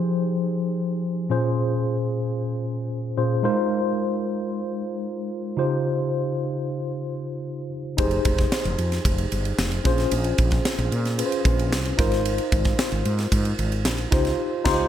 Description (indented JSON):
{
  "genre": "polished 1980s jazz-funk pop",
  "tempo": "112 BPM",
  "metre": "4/4",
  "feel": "straight",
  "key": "unclear",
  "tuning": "A4 = 440 Hz",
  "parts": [
    { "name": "mellow tine electric piano", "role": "accompaniment", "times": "0.0-14.9 s", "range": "Bb2 to C5", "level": "-24 LUFS", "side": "left 1 dB", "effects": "medium stereo tremolo, wide subtle chorus" },
    { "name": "woody fretless electric bass", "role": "bass", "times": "8.0-14.8 s", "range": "F1 to Bb2", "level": "-25 LUFS", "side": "equal", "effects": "none" },
    { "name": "crisp fusion drum kit", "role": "drums", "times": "8.0-14.8 s", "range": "crash cymbal, kick drum, ride cymbal, snare drum", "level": "-24 LUFS", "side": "right 1 dB", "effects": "gated reverb" }
  ],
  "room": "light reverb, studio reverb",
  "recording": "bright 1980s-style digital production",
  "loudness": "-22 LUFS",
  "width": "side -10 dB against mid",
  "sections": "0.0-14.9 A section",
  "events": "band accent 14.4-14.9",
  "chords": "0.0 Fm9; 1.3 Bbm9; 3.4 Ab69; 5.6 Dbmaj9#11; 8.0 Fm9; 9.9 Bbm9; 12.0 Ab69; 14.1 Dbmaj9#11"
}